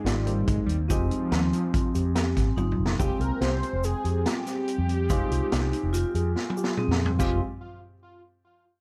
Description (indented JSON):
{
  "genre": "progressive instrumental, band music in an uneven meter",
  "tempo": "143 BPM",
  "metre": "5/4",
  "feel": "straight",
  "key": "F minor",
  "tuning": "A4 = 440 Hz",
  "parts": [
    { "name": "unison lead", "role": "melody", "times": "0.0-7.4 s", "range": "F3 to C5", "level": "-34 LUFS", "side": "equal", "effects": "digital delay" },
    { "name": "vibraphone with medium mallets", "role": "second line", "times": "0.0-7.4 s", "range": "C4 to F4", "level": "-35 LUFS", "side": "equal", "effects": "none" },
    { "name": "warm baby grand piano", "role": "accompaniment", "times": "0.0-7.4 s", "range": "Ab3 to G5", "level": "-39 LUFS", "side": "equal", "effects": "plate reverb" },
    { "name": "mellow fretless electric bass", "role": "bass", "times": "0.0-7.4 s", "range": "F1 to F2", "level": "-29 LUFS", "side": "equal", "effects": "none" },
    { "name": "mellow tine electric piano", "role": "arpeggios", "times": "0.1-7.4 s", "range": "C4 to Ab4", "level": "-38 LUFS", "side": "equal", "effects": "plate reverb" },
    { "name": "street-band drum kit", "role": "drums", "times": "0.1-7.3 s", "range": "crash cymbal, hi-hat, kick drum, snare drum, toms", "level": "-31 LUFS", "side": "equal", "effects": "none" },
    { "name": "tube shaker", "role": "percussion", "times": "0.9-7.4 s", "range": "none", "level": "-47 LUFS", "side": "equal", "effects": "none" }
  ],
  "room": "light reverb",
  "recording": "dark, warm production",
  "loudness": "-26 LUFS",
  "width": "mono",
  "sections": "0.0-3.0 A section; 3.0-7.2 B section; 7.2-8.8 C section",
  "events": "drum fill 2.6-3.0, 6.4-7.2",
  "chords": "0.0 Abmaj7; 0.9 Fm7; 7.2 Fmadd9"
}